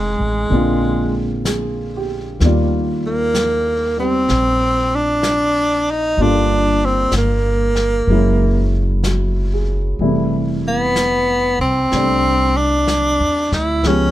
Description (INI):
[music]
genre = jazz ballad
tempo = 63 BPM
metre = 4/4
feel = swing 66% on 8ths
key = unclear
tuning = A4 = 440 Hz
[part]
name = breathy tenor saxophone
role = melody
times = 0.0-14.1 s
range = Ab3 to E4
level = -17 LUFS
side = equal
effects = none
[part]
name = warm upright piano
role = accompaniment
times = 0.0-14.1 s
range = C3 to D5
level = -21 LUFS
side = equal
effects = none
[part]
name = upright bass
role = bass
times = 0.0-14.1 s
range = F1 to E2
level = -20 LUFS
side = equal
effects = none
[part]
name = vintage brush drum kit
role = drums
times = 0.5-14.1 s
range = brushed snare drum, hi-hat, snare drum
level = -27 LUFS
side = left 2 dB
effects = none
[sound]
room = little or no reverb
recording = close, detailed microphones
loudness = -14 LUFS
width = side -14 dB against mid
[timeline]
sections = 0.0-14.1 A section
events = none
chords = 0.0 Fm7; 0.5 Bb9; 2.4 Ebmaj9; 6.2 Gm9; 8.1 F#9; 10.0 Fmaj9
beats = 0.51 1.46 | 2.41 3.35 4.29 5.24 | 6.19 7.14 8.09 9.05 | 10.01 10.97 11.92 12.88 | 13.83